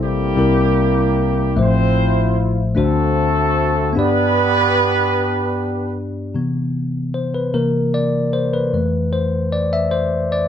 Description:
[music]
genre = gospel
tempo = 50 BPM (dotted quarters)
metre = 6/8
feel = straight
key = C major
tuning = A4 = 439 Hz
[part]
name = warm horn section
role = melody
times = 0.0-6.0 s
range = G3 to C5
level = -18 LUFS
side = right 3 dB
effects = none
[part]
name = bell-like tine electric piano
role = accompaniment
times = 0.0-10.5 s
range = A1 to E5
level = -17 LUFS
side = left 2 dB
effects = none
[sound]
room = light reverb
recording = dark, warm production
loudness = -15 LUFS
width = side -9 dB against mid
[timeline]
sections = 0.0-6.4 A section; 6.4-10.5 B section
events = tine electric piano solo 6.4-10.5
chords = 0.4 C7; 1.6 Fmaj7/A; 2.8 D7; 4.0 G; 6.4 Cmaj7; 7.6 C7; 8.7 Fmaj7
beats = 0.38 | 1.57 2.77 | 3.96 5.16 | 6.36 7.55 | 8.75 9.95

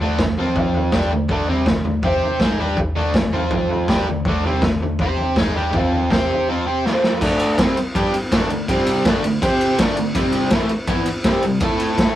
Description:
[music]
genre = garage rock duo or trio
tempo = 163 BPM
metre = 4/4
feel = straight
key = unclear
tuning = A4 = 441 Hz
[part]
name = crunchy overdriven guitar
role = riff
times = 0.0-12.2 s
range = A2 to C5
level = -19 LUFS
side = equal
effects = none
[part]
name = raw garage drum kit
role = drums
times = 0.2-12.1 s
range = crash cymbal, kick drum, ride cymbal, snare drum, toms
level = -19 LUFS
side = equal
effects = none
[sound]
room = moderate small room reverb, RT60 0.6 s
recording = rough rehearsal-room recording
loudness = -16 LUFS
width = side -13 dB against mid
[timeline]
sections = 0.0-7.2 A section; 7.2-12.2 B section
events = drum fill 6.8-7.2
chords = 0.4 F5; 0.9 D5; 2.0 C5; 2.4 D5; 3.3 F5; 3.9 D5; 5.0 C5; 5.4 Ebadd11; 5.7 F5; 6.1 C5; 6.5 Fsus2; 6.8 F5; 7.2 D5; 8.7 C5; 9.1 D5; 9.4 C5; 9.8 D5; 10.2 C5; 11.6 A5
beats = 0.19 0.56 0.93 | 1.30 1.67 2.04 2.41 | 2.78 3.15 3.52 3.89 | 4.26 4.63 5.00 5.37 | 5.74 6.11 6.47 6.84 | 7.21 7.58 7.95 8.31 | 8.68 9.05 9.42 9.78 | 10.15 10.52 10.88 11.25 | 11.62 11.99

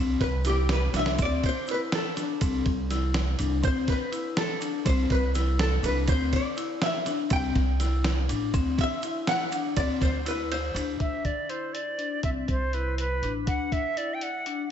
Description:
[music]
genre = progressive instrumental, band music in an uneven meter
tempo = 245 BPM (eighths)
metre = 5/8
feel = straight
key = unclear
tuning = A4 = 440 Hz
[part]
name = vibraphone with medium hard mallets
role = arpeggios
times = 0.0-14.6 s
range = C4 to E4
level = -31 LUFS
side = left 5 dB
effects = none
[part]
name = upright bass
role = bass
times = 0.0-14.7 s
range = A1 to D3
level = -28 LUFS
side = right 1 dB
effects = none
[part]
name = archtop guitar, miked and amplified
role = accompaniment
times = 0.2-11.0 s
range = G4 to G5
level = -30 LUFS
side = equal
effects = double-tracked left and right, slapback echo
[part]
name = lo-fi sampler-style drum kit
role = drums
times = 0.2-14.6 s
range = hi-hat, kick drum, ride cymbal, snare drum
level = -30 LUFS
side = right 1 dB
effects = none
[part]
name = tube shaker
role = percussion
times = 0.4-11.0 s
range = none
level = -48 LUFS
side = right 6 dB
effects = none
[part]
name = bright silver concert flute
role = melody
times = 11.0-14.7 s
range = B4 to G5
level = -30 LUFS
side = right 1 dB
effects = slapback echo, tape echo
[sound]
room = moderate lush hall reverb, RT60 2.1 s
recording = big arena sound, nothing above 7.9 kHz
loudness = -24 LUFS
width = side -9 dB against mid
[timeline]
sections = 0.0-11.0 A section; 11.0-14.7 B section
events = hollow-body jazz guitar solo 0.0-11.0; drum fill 0.9; break 10.5-11.0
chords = 0.0 C; 1.2 D5; 2.4 C; 3.6 D5; 4.9 Cmaj7; 6.1 Cadd9/D; 7.3 C; 8.5 Cadd9/D; 11.0 Dsus2; 12.2 C; 13.5 D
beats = 0.21 0.46 0.70 0.94 | 1.19 1.44 1.68 1.93 2.17 | 2.42 2.66 2.91 3.15 3.40 | 3.64 3.89 4.13 4.38 4.62 | 4.87 5.11 5.36 5.60 5.85 | 6.09 6.34 6.58 6.83 7.07 | 7.32 7.56 7.81 8.05 8.30 | 8.54 8.79 9.03 9.28 9.53 | 9.77 10.02 10.26 10.51 10.76 | 11.00 11.25 11.50 11.74 11.99 | 12.24 12.48 12.73 12.98 13.22 | 13.47 13.72 13.97 14.21 14.46 | 14.71

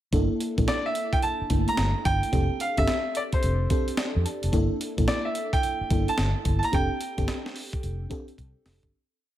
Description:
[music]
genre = R&B, new jack swing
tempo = 109 BPM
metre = 4/4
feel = swing 64% on 16ths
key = G dorian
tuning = A4 = 439 Hz
[part]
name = FM electric piano with soft pad layer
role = accompaniment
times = 0.1-9.0 s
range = A3 to A5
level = -30 LUFS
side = equal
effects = chorus
[part]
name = vintage muted fingered electric bass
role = bass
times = 0.1-8.9 s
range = F1 to F2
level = -26 LUFS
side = equal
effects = none
[part]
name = breakbeat sampler-style drum kit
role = drums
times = 0.1-8.9 s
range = hi-hat, kick drum, snare drum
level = -28 LUFS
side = equal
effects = gated reverb
[part]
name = clear concert grand piano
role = melody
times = 0.7-8.6 s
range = C5 to Bb5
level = -28 LUFS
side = right 1 dB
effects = digital delay
[sound]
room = digital ambience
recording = none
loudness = -23 LUFS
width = side -12 dB against mid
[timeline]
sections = 0.1-8.9 verse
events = FM electric piano fill 3.7-4.5; fade-out 6.7-8.9; drum fill 8.4-8.9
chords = 0.1 Gm69; 2.3 F69; 4.5 Gm69; 6.7 F69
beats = | 0.13 0.68 1.23 1.78 | 2.33 2.88 3.43 3.98 | 4.53 5.08 5.63 6.18 | 6.73 7.28 7.83 8.38

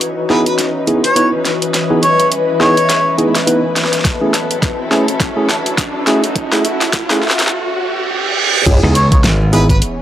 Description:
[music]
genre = glitch hop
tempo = 104 BPM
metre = 4/4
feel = swing 58% on 16ths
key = C# minor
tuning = A4 = 439 Hz
[part]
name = dark studio string section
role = sustained chords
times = 0.0-10.0 s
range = E3 to B4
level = -22 LUFS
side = left 1 dB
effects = vintage 12-bit sampler grit, sidechain pumping, low-pass filter
[part]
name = pop drum kit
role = drums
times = 0.0-10.0 s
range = crash cymbal, hi-hat, rim click, snare drum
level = -18 LUFS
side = equal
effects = overdrive, high-pass filter on hats, high-pass filter on snare, high-pass filter on cymbals, high-pass filter on room
[part]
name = riser, reverse cymbal and sub drop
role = sound effects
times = 2.2-10.0 s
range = none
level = -20 LUFS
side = right 2 dB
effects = none
[part]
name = ethereal airy pad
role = texture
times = 0.0-7.5 s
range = E3 to E5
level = -21 LUFS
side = left 3 dB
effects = ensemble chorus, built-in reverb, phaser, sidechain pumping
[part]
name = mellow harmonica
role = melody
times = 0.3-3.2, 8.9-9.8 s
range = B4 to C#5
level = -16 LUFS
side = equal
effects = tape echo
[part]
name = bright tine electric piano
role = stabs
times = 0.3-9.7 s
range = A3 to B4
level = -17 LUFS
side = right 1 dB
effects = sidechain pumping, low-pass filter, tape echo
[part]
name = electronic kick drum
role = drums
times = 4.0-9.8 s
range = none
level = -14 LUFS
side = equal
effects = overdrive
[part]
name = formant-sweep wobble bass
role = bass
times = 8.7-8.8 s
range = C#2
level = -13 LUFS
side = equal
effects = chorus, tube saturation
[part]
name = glassy slap bass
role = bass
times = 8.8-9.8 s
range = G#1 to C#2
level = -13 LUFS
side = equal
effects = none
[sound]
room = light reverb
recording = dry, gritty hardware recording, high-pass filter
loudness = -11 LUFS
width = side -11 dB against mid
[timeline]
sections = 0.0-8.7 A section; 8.7-10.0 B section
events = build-up 0.0-8.7; drum fill 0.0-7.5; filter sweep on string section 0.0-8.7; filter sweep 0.0-8.7; riser 2.2-8.7; reverse cymbal 7.5-8.7; drop 8.7-10.0; impact 8.7-10.0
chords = 0.0 C#m9; 4.0 F#m7; 8.7 C#m9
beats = 0.01 0.59 1.16 | 1.74 2.32 2.89 3.47 | 4.05 4.62 5.20 5.78 | 6.36 6.93 7.51 8.09 | 8.66 9.24 9.82

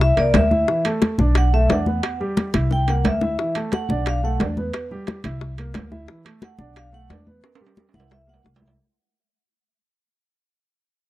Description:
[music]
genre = Afro-Cuban jazz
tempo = 178 BPM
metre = 4/4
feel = straight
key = unclear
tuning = A4 = 440 Hz
[part]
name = vibraphone with medium mallets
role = melody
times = 0.0-4.4, 6.4-8.4 s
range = D5 to G5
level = -23 LUFS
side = left 1 dB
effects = none
[part]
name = warm upright piano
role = accompaniment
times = 0.0-8.8 s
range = E3 to E5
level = -28 LUFS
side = right 2 dB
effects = none
[part]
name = upright bass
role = bass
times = 0.0-8.7 s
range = B1 to E2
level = -21 LUFS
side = equal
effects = none
[part]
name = bongos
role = percussion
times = 0.0-8.8 s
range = none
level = -29 LUFS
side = left 7 dB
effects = none
[part]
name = congas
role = percussion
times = 0.0-8.8 s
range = none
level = -24 LUFS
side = left 1 dB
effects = none
[part]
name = timbales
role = percussion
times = 0.2-8.8 s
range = none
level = -29 LUFS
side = right 6 dB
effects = none
[sound]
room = small room ambience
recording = dry, close 1970s-style studio recording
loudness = -18 LUFS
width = side -16 dB against mid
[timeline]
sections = 0.0-8.8 A section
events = fade-out 0.0-8.8; vibraphone solo 0.0-8.8; drum fill 2.4-3.4, 7.4-8.8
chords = 0.0 C7; 0.7 Bm7; 2.0 Em; 2.7 C7; 3.4 Bm7; 4.7 Em; 5.4 C7; 6.1 Bm7; 7.4 Em; 8.1 C7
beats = 0.00 0.34 | 0.68 1.02 1.35 1.69 | 2.03 2.37 2.71 3.04 | 3.38 3.72 4.06 4.40 | 4.74 5.07 5.41 5.75 | 6.09 6.42 6.76 7.10 | 7.44 7.78 8.12 8.45

